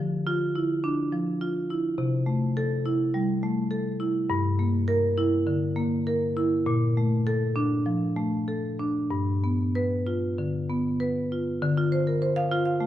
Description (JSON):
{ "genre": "classical, contemporary piece for solo marimba", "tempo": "94-107 BPM", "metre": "4/4", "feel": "rubato", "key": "unclear", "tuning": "A4 = 441 Hz", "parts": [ { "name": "marimba with medium hard mallets", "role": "solo", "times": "0.0-12.9 s", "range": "G2 to F5", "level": "-24 LUFS", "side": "equal", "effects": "none" } ], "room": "wet recital hall reverb, RT60 1.5 s", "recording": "dark, warm production", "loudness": "-24 LUFS", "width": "side -12 dB against mid", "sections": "0.0-11.6 A section; 11.6-12.9 B section", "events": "none", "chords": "0.0 Dmadd9; 2.0 C6; 4.3 Gm6; 6.7 Bbmaj7; 9.1 G7; 11.6 Dm7" }